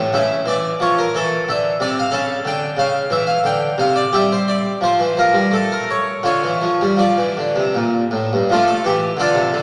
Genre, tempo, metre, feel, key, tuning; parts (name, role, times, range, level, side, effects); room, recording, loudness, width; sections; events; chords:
classical, baroque-style suite movement for harpsichord; 80-93 BPM; 3/4; rubato; D minor; A4 = 441 Hz
harpsichord; solo; 0.0-9.6 s; G2 to A5; -18 LUFS; equal
wet church reverb, RT60 2.8 s; -18 LUFS; mono
0.0-8.5 A section; 8.5-9.6 B section
0.2 C#m6; 1.5 Cadd9; 2.1 A/C#; 3.5 Csus24; 4.1 Em7b5; 5.5 N.C.; 6.3 Dm